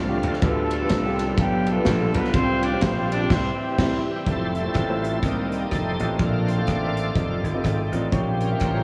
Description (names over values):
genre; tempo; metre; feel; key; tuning
uptempo gospel; 124 BPM; 4/4; swing 60% on 8ths; F major; A4 = 440 Hz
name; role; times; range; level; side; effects
bright tonewheel organ; sustained chords; 0.0-8.8 s; C3 to D5; -31 LUFS; equal; slow rotary speaker, overdrive, chorus vibrato
glassy slap bass; bass; 0.0-8.8 s; F1 to D2; -28 LUFS; equal; none
warm baby grand piano; accompaniment; 0.1-8.8 s; Bb2 to F5; -30 LUFS; equal; none
modern studio drum kit; drums; 0.2-8.7 s; crash cymbal, hi-hat, kick drum, ride cymbal, rim click, snare drum; -29 LUFS; equal; none
mellow horn section; melody; 0.4-4.2 s; G3 to D5; -30 LUFS; equal; analog delay
room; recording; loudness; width
moderate huge ambient reverb, RT60 4.8 s; dreamy mix soaked in reverb, small room ambience; -23 LUFS; mono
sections
0.0-4.3 A section; 4.3-8.8 B section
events
band accent 3.3-4.3; tonewheel organ solo 4.3-8.8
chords
0.4 G7; 2.3 Csus4; 3.3 C; 4.3 Fmaj7; 5.2 Cm7; 5.7 F9; 6.2 Bbmaj7; 7.2 F7; 8.1 Bbm6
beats
| 0.42 0.90 1.38 1.86 | 2.34 2.82 3.30 3.78 | 4.26 4.74 5.23 5.71 | 6.19 6.68 7.16 7.64 | 8.13 8.61